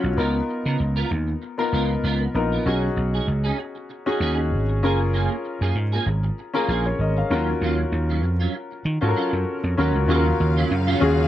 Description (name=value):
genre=pop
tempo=97 BPM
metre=4/4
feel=swing 54% on 16ths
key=Eb minor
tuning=A4 = 440 Hz
part: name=warm concert grand piano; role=accompaniment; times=0.0-11.3 s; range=Cb4 to F5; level=-24 LUFS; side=left 3 dB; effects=analog chorus
part: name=clean electric guitar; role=riff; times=0.0-11.2 s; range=Gb3 to Bb4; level=-28 LUFS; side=right 4 dB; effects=ensemble chorus
part: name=vintage slap bass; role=bass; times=0.0-11.3 s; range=Gb1 to Eb3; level=-22 LUFS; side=right 1 dB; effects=none
part: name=warm studio string section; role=sustained chords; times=10.1-11.3 s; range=Db3 to F5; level=-29 LUFS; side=right 1 dB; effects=none
room=little or no reverb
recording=dry, close 1970s-style studio recording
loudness=-20 LUFS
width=side -12 dB against mid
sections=0.0-10.1 A section; 10.1-11.3 B section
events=none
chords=0.2 Db13; 2.7 B69; 4.8 Gbmaj9; 7.3 Ebm9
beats=| 0.18 0.80 1.42 2.04 | 2.66 3.28 3.90 4.52 | 5.14 5.76 6.38 7.00 | 7.62 8.23 8.86 9.47 | 10.09 10.71